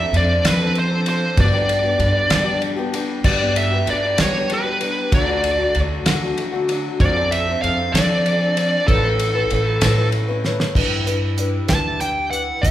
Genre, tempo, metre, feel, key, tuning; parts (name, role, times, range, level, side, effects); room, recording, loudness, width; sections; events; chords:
folk rock and heartland rock; 64 BPM (dotted quarters); 6/8; straight; A4 = 437 Hz
smooth overdriven lead guitar; melody; 0.0-12.7 s; A4 to A5; -20 LUFS; right 1 dB
picked twelve-string acoustic guitar; accompaniment; 0.0-12.7 s; G2 to B4; -24 LUFS; left 3 dB
upright bass; bass; 0.0-12.7 s; A1 to G3; -22 LUFS; equal
damped 70s drum kit; drums; 0.1-12.7 s; crash cymbal, hi-hat, kick drum, ride cymbal, snare drum; -22 LUFS; equal
wet recital hall reverb, RT60 1.3 s; recorded in a church or concert hall; -16 LUFS; side -12 dB against mid
0.0-10.8 A section; 10.8-12.7 B section
drum fill 10.4-10.8; lead electric guitar solo 10.8-12.7
0.0 F6; 1.4 G; 5.1 D; 7.0 F6; 8.9 Aadd9; 10.8 G6